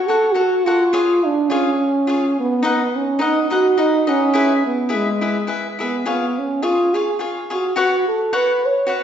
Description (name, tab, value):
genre	mexican folk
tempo	105 BPM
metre	3/4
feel	swing 55% on 8ths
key	unclear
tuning	A4 = 440 Hz
part	mellow French horn	melody	0.0-8.9 s	G#3 to C#5	-17 LUFS	right 1 dB	none
part	cavaquinho	accompaniment	0.1-9.0 s	D#4 to F#5	-22 LUFS	left 3 dB	none
room	wet recital hall reverb, RT60 1.6 s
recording	heard from further back in the room, nothing above 7.8 kHz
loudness	-16 LUFS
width	side -9 dB against mid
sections	0.0-9.0 A section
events	none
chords	0.0 F#m; 0.9 C#; 2.6 B; 4.3 E; 6.1 C#; 7.8 Bsus2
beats	0.36 | 0.93 1.50 2.07 | 2.63 3.20 3.76 | 4.33 4.90 5.47 | 6.05 6.63 7.20 | 7.77 8.34 8.90